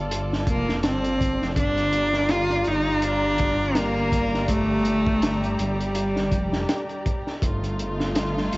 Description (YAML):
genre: trip hop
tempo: 82 BPM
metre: 4/4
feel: swing 58% on 16ths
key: G minor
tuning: A4 = 440 Hz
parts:
  - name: dark chamber string section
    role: sustained chords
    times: 0.0-8.6 s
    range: G3 to Bb5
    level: -29 LUFS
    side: equal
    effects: none
  - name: dark detuned saw bass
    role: bass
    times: 0.0-8.6 s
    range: F1 to G1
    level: -28 LUFS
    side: equal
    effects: none
  - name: crunchy breakbeat drum kit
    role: drums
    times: 0.1-8.6 s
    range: hi-hat, kick drum, snare drum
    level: -27 LUFS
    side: equal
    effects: none
  - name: rich cello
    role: melody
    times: 0.5-7.1 s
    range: G3 to F4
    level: -23 LUFS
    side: equal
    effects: cassette tape, tape echo
room: light reverb, small room ambience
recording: home recording on cassette, vinyl crackle, nothing above 7.8 kHz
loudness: -21 LUFS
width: side -22 dB against mid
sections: 0.0-8.6 A section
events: none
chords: 0.0 F; 1.6 Gm7; 7.4 F7/G